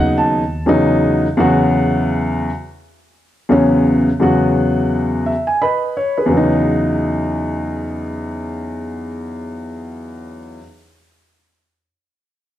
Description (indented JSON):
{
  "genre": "hip hop",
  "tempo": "85 BPM",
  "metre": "4/4",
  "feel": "swing 59% on 16ths",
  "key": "unclear",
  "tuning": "A4 = 440 Hz",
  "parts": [
    { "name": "dark baby grand piano", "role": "accompaniment", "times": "0.0-10.6 s", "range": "E2 to B5", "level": "-15 LUFS", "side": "equal", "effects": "none" },
    { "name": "upright bass", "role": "bass", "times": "0.0-0.6 s", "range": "D#2", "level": "-22 LUFS", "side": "equal", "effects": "none" }
  ],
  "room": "moderate studio reverb, RT60 0.6 s",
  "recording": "none",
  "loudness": "-14 LUFS",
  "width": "side -12 dB against mid",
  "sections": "0.0-6.3 A section; 6.3-9.2 B section",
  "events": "grand piano fill 0.0-0.7, 4.9-6.3",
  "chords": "0.0 B; 0.7 Esus2"
}